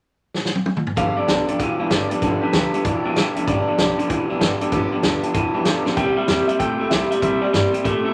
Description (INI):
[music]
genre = rockabilly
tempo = 192 BPM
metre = 4/4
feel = swing 64% on 8ths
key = G mixolydian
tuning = A4 = 440 Hz
[part]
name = vintage drum kit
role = drums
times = 0.3-7.9 s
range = hi-hat, kick drum, snare drum, toms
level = -25 LUFS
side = equal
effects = none
[part]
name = electric guitar through a small old amp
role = melody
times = 1.0-8.1 s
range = B4 to G5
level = -29 LUFS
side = equal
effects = phaser
[part]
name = picked steel-string acoustic guitar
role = accompaniment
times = 1.0-8.1 s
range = G2 to G4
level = -29 LUFS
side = equal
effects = none
[part]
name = electric guitar through a small old amp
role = riff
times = 1.0-8.1 s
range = G2 to A3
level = -23 LUFS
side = equal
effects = spring reverb
[part]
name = upright bass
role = bass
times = 1.0-8.1 s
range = G1 to Bb2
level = -31 LUFS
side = equal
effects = none
[sound]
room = light reverb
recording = none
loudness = -20 LUFS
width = mono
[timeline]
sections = 1.0-8.1 A section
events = drum fill 0.3-1.0, 5.8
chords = 0.0 N.C.; 1.0 G7; 6.0 C7